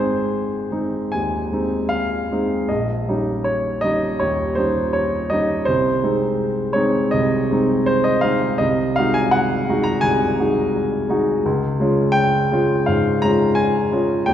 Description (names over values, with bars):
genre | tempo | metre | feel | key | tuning
classical, romantic character piece for solo piano | 83 BPM | 4/4 | uneven beats, rubato | Ab major | A4 = 439 Hz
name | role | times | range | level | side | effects
warm grand piano | solo | 0.0-14.3 s | Ab1 to Bb5 | -17 LUFS | equal | none
room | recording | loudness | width
wet scoring stage reverb, RT60 1.9 s | recorded in a church or concert hall | -17 LUFS | side -10 dB against mid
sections
0.0-14.3 A section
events
none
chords
0.0 Ab; 2.7 Eb7/Bb; 5.7 Ab/C; 8.6 Ab7/C; 11.4 Db